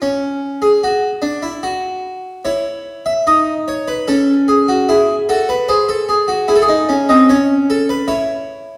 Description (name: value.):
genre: classical, baroque-style 3-part fugue for harpsichord.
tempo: 74 BPM.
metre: 4/4.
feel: straight.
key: unclear.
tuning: A4 = 442 Hz.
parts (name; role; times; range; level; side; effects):
harpsichord; solo; 0.0-8.8 s; B#3 to E5; -16 LUFS; equal; none.
room: wet recital hall reverb, RT60 1.4 s.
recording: heard from further back in the room.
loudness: -15 LUFS.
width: mono.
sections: 0.0-8.8 A section.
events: none.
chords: 0.0 N.C.; 2.5 C#m/E; 4.1 F#m/C#; 5.7 G#; 7.3 C#m.